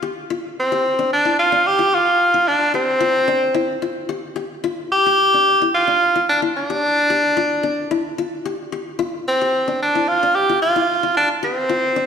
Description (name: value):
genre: afrobeat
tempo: 110 BPM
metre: 4/4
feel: swing 54% on 16ths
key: unclear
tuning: A4 = 440 Hz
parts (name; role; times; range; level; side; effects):
- qanun; arpeggios; 0.0-12.1 s; D4 to G4; -25 LUFS; left 6 dB; slapback echo
- edgy tenor saxophone; melody; 0.6-12.1 s; C4 to G4; -16 LUFS; equal; slapback echo
room: light reverb, small room ambience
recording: live gig heard through the venue's PA, recital hall reverb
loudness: -16 LUFS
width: side -7 dB against mid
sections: 0.0-12.1 A section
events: none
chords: 0.0 Dmadd11